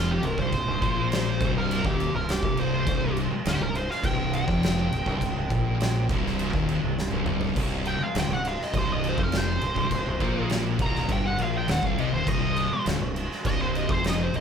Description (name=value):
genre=stoner and doom metal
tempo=102 BPM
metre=4/4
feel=straight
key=C minor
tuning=A4 = 436 Hz
part: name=fuzz lead guitar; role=melody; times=0.0-14.4 s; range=F4 to Bb5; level=-30 LUFS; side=right 1 dB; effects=wah, distortion
part: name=thick fuzz guitar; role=riff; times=0.0-14.4 s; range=C2 to C3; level=-30 LUFS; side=left 7 dB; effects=distortion
part: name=thick fuzz guitar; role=riff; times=0.0-14.4 s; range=C2 to C3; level=-30 LUFS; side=right 6 dB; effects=distortion
part: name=growling fingered electric bass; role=bass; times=0.0-14.4 s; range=C1 to C2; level=-31 LUFS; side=equal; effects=overdrive
part: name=oversized low-tuned drum kit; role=drums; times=0.2-14.4 s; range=crash cymbal, kick drum, snare drum, splash cymbal, toms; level=-29 LUFS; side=right 1 dB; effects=none
room=moderate large studio reverb, RT60 1.2 s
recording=band playing live in one room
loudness=-23 LUFS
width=side -7 dB against mid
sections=0.0-14.4 A section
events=lead electric guitar solo 0.0-14.4; drum fill 7.0-7.6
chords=0.0 Cm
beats=| 0.53 1.11 1.70 2.29 | 2.87 3.46 4.04 4.63 | 5.22 5.80 6.39 6.97 | 7.56 8.15 8.74 9.32 | 9.91 10.50 11.09 11.68 | 12.26 12.85 13.44 14.03